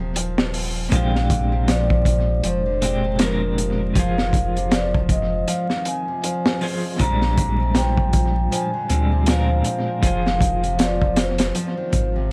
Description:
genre	trip hop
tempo	79 BPM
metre	4/4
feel	swing 59% on 16ths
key	F dorian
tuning	A4 = 444 Hz
part	clean electric guitar	accompaniment	0.0-12.3 s	Bb2 to C5	-30 LUFS	equal	tremolo, vintage 12-bit sampler grit, tape echo
part	nylon-string guitar	arpeggios	0.0-12.3 s	C3 to F3	-31 LUFS	equal	tape echo
part	warm sub bass	bass	0.0-12.3 s	Eb1 to D2	-25 LUFS	equal	tube saturation
part	crunchy breakbeat drum kit	drums	0.2-12.1 s	hi-hat, kick drum, snare drum	-24 LUFS	equal	tape echo
part	vibraphone with soft mallets	melody	0.9-12.3 s	Bb4 to Bb5	-28 LUFS	equal	tape echo
part	deep dark ambient pad	sustained chords	2.3-12.3 s	F3 to C5	-37 LUFS	equal	none
room	studio reverb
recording	echo-heavy mix, vinyl crackle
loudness	-20 LUFS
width	mono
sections	0.0-12.3 A section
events	none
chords	0.0 Fm; 0.9 Bb13; 4.0 Fm; 7.0 Bb13; 10.0 Fm

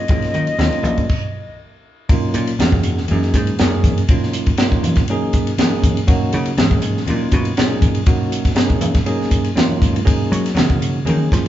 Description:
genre	electric jazz fusion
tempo	120 BPM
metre	4/4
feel	swing 53% on 16ths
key	Eb minor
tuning	A4 = 439 Hz
part	bright concert flute	melody	0.0-1.6 s	Eb5	-24 LUFS	left 4 dB	none
part	bell-like tine electric piano	accompaniment	0.0-11.5 s	Gb3 to Ab4	-21 LUFS	right 1 dB	fast stereo tremolo
part	dry thumbed slap bass	bass	0.1-11.5 s	Bb1 to Gb3	-21 LUFS	equal	none
part	crisp fusion drum kit	drums	0.1-11.5 s	crash cymbal, hi-hat, kick drum, ride cymbal, snare drum	-17 LUFS	equal	none
part	congas	percussion	0.1-11.4 s	none	-24 LUFS	equal	none
room	moderate large studio reverb, RT60 1.3 s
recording	band playing live in one room, nothing above 7.6 kHz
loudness	-14 LUFS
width	side -12 dB against mid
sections	0.0-2.1 A section; 2.1-11.5 B section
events	stop 1.1-2.1; slap bass solo 2.1-11.5; drum fill 9.7-10.1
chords	0.0 Ebm9

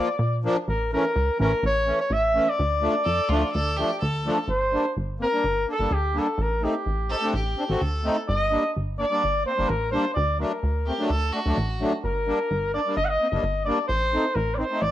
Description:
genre	klezmer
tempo	127 BPM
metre	4/4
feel	straight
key	D harmonic minor, G harmonic minor from 4.5 s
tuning	A4 = 442 Hz
part	warm cornet	melody	0.0-14.9 s	G4 to F#5	-24 LUFS	equal	cassette tape, plate reverb
part	accordion	accompaniment	0.0-14.8 s	E3 to F#4	-28 LUFS	left 1 dB	light tremolo tuning, cassette tape, plate reverb
part	plucky analog bass	bass	0.2-14.9 s	G1 to Bb2	-26 LUFS	equal	none
part	clear violin	second line	3.0-11.9 s	F4 to A4	-30 LUFS	right 1 dB	cassette tape, plate reverb
room	moderate small room reverb, RT60 0.5 s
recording	home recording on cassette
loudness	-22 LUFS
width	side -13 dB against mid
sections	0.0-4.5 A section; 4.5-14.9 B section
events	speeding up 0.0-14.9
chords	0.0 Bb; 0.7 A; 2.6 Dm; 4.5 Gm; 6.4 Adim; 8.3 Gm; 10.2 D; 12.0 Gm; 13.9 Adim

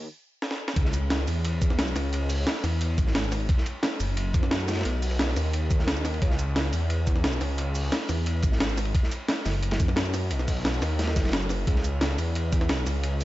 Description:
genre	liquid drum and bass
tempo	176 BPM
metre	4/4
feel	straight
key	C# minor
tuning	A4 = 440 Hz
part	swelling detuned saw bass	bass	0.0-13.2 s	F#1 to F#2	-26 LUFS	equal	tube saturation
part	breakbeat sampler-style drum kit	drums	0.4-13.2 s	hi-hat, shaker, snare drum	-30 LUFS	equal	studio reverb
part	crunchy breakbeat drum kit	drums	0.8-13.2 s	hi-hat, ride cymbal, snare drum	-34 LUFS	equal	high-pass filter on cymbals, studio reverb, high-pass filter on hats, high-pass filter on snare, high-pass filter on room
part	electronic kick drum	drums	0.8-12.6 s	none	-25 LUFS	equal	studio reverb
room	small room ambience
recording	dark, warm production, high-pass filter, nothing above 7.8 kHz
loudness	-24 LUFS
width	side -16 dB against mid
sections	0.8-13.2 A section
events	stop 0.1-0.8; drum fill 0.4-0.8; drop 0.8-13.2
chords	none

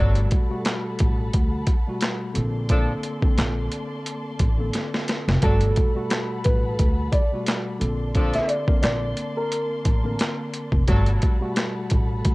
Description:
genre	hip hop, boom-bap hip-hop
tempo	88 BPM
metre	4/4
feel	swing 56% on 16ths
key	unclear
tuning	A4 = 438 Hz
part	mellow tine electric piano	accompaniment	0.0-12.3 s	B2 to Bb4	-29 LUFS	left 1 dB	medium stereo tremolo, high-pass filter, low-pass filter, cassette tape
part	warm studio string section	sustained chords	0.0-12.3 s	Bb3 to C6	-37 LUFS	equal	high-pass filter, low-pass filter, cassette tape
part	clear horn section	stabs	0.0-11.1 s	F3 to A4	-31 LUFS	equal	high-pass filter, low-pass filter, cassette tape, analog delay
part	upright bass	bass	0.0-12.3 s	F1 to D2	-24 LUFS	equal	none
part	boom bap sampler-style drum kit	drums	0.2-12.3 s	handclaps, hi-hat, kick drum, snare drum	-22 LUFS	equal	overdrive
part	dark upright piano	melody	5.4-10.4 s	A4 to E5	-27 LUFS	equal	high-pass filter, low-pass filter, cassette tape
room	studio reverb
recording	home recording on cassette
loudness	-20 LUFS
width	side -22 dB against mid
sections	0.0-12.3 A section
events	drum fill 4.7-5.4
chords	0.0 Gmaj9; 2.4 Bbmaj9; 5.4 Gmaj9; 7.8 Bbmaj9; 10.9 Gmaj9

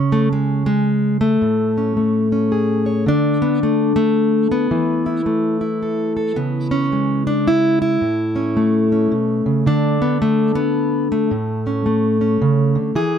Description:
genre	folk, solo fingerstyle acoustic guitar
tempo	109 BPM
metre	3/4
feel	swing 63% on 8ths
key	A major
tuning	A4 = 440 Hz
part	fingerpicked plugged-in steel-string acoustic guitar	solo	0.0-13.2 s	A2 to C#5	-15 LUFS	equal	none
room	little or no reverb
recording	close, detailed microphones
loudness	-15 LUFS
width	side -8 dB against mid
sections	0.0-13.0 A section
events	none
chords	0.0 N.C.; 1.4 Amaj7; 3.1 N.C.; 4.7 Esus4; 6.4 C#5; 8.0 A; 9.7 N.C.; 11.3 A

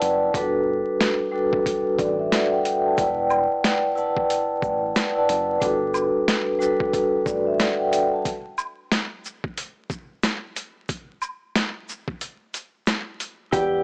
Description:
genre	hip hop, boom-bap hip-hop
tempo	91 BPM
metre	4/4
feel	swing 60% on 16ths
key	unclear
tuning	A4 = 440 Hz
part	vibraphone with soft mallets	accompaniment	0.0-8.3, 13.5-13.8 s	G3 to A5	-20 LUFS	equal	cassette tape, high-pass filter, low-pass filter
part	deep dub fingered electric bass	bass	0.0-7.6, 13.5-13.8 s	E1 to A1	-34 LUFS	equal	transformer saturation
part	boom bap sampler-style drum kit	drums	0.0-13.7 s	hi-hat, kick drum, shaker, snare drum	-24 LUFS	equal	none
part	egg shaker and woodblock	percussion	3.0-13.7 s	none	-32 LUFS	right 1 dB	none
part	mellow electric guitar	melody	13.5-13.8 s	G4	-20 LUFS	equal	high-pass filter, low-pass filter
room	digital ambience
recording	dry, gritty hardware recording, vinyl crackle, small speaker sound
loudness	-20 LUFS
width	side -29 dB against mid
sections	0.0-13.5 A section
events	break 8.3-13.5; kick muted 12.2-13.5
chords	0.3 Gmaj9; 3.0 Em9; 5.6 Gmaj9; 8.3 N.C.

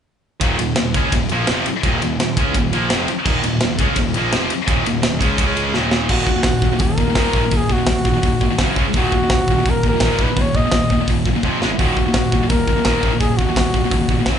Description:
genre	heavy metal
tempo	169 BPM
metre	4/4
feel	straight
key	Eb minor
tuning	A4 = 440 Hz
part	heavy high-gain guitar	riff	0.4-14.4 s	Eb2 to Db4	-22 LUFS	left 8 dB	distortion
part	tight distorted guitar	riff	0.4-14.4 s	Eb2 to Db4	-22 LUFS	right 7 dB	distortion
part	fuzz picked electric bass	bass	0.4-14.4 s	Eb1 to Db2	-26 LUFS	equal	overdrive
part	tight metal drum kit	drums	0.4-14.4 s	crash cymbal, hi-hat, kick drum, ride cymbal, snare drum	-19 LUFS	equal	none
part	warm flugelhorn	melody	6.1-14.4 s	Fb4 to Eb5	-22 LUFS	left 1 dB	none
room	moderate large studio reverb, RT60 1.2 s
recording	band playing live in one room, nothing above 10.8 kHz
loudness	-15 LUFS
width	side -8 dB against mid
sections	0.4-6.1 A section; 6.1-14.4 B section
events	drum fill 5.8-6.1, 11.4-11.8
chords	0.4 Eb5; 5.4 Db5; 5.8 Eb5; 6.1 Ebm; 8.6 Gb5; 8.8 Db5; 8.9 Ebm; 11.4 F5; 11.6 Ab5; 11.8 Ebm

